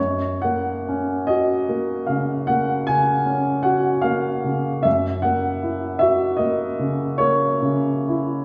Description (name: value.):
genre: classical, romantic nocturne for solo piano.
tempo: 40-52 BPM (dotted quarters).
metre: 12/8.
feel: rubato.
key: F# major.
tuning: A4 = 442 Hz.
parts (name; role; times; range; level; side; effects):
warm baby grand piano; solo; 0.0-8.4 s; F#2 to G#5; -21 LUFS; equal; none.
room: wet recital hall reverb, RT60 1.4 s.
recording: recorded in a church or concert hall.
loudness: -21 LUFS.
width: mono.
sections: 0.0-8.4 A section.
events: none.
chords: 0.0 F#; 4.9 F#7.